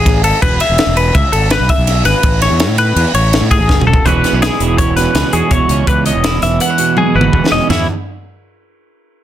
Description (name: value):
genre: math rock and midwest emo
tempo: 165 BPM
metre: 5/4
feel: straight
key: E major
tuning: A4 = 440 Hz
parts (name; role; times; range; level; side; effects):
- twelve-string electric guitar; arpeggios; 0.0-7.9 s; E4 to F#5; -15 LUFS; left 3 dB; none
- fuzz fingered electric bass; bass; 0.0-7.9 s; E1 to A2; -15 LUFS; equal; overdrive
- crisp fusion drum kit; drums; 0.1-7.8 s; crash cymbal, hi-hat, kick drum, ride cymbal, snare drum, splash cymbal, toms; -15 LUFS; equal; none
- twelve-string electric guitar; accompaniment; 4.1-7.9 s; E2 to F#4; -16 LUFS; right 10 dB; warbly pitch drift
room: little or no reverb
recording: dense, heavily limited modern master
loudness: -10 LUFS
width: side -11 dB against mid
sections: 0.0-4.1 A section; 4.1-7.7 B section; 7.7-9.2 C section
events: drum fill 3.7-4.1, 7.0-7.7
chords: 0.4 E; 2.2 Amaj7; 4.1 E69; 7.7 E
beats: 0.06 | 0.43 0.79 1.15 1.52 1.88 | 2.24 2.60 2.97 3.33 3.69 | 4.06 4.42 4.79 5.15 5.51 | 5.88 6.24 6.60 6.97 7.33 | 7.69